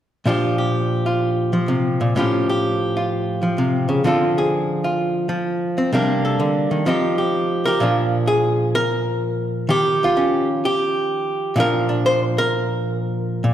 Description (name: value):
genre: solo jazz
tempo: 128 BPM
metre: 4/4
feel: swing 68% on 8ths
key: unclear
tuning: A4 = 440 Hz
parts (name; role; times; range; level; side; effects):
- archtop guitar, miked and amplified; solo; 0.3-13.5 s; A2 to C5; -17 LUFS; equal; none
room: wet scoring stage reverb, RT60 1.7 s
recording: recorded in a church or concert hall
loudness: -17 LUFS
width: side -10 dB against mid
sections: 0.3-7.8 A section; 7.8-13.5 B section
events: none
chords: 0.3 Bb69; 2.2 A7alt; 4.0 Dm7; 5.9 Cm9; 6.9 Fsus2; 7.8 Bb7; 9.7 Eb9; 11.6 Bb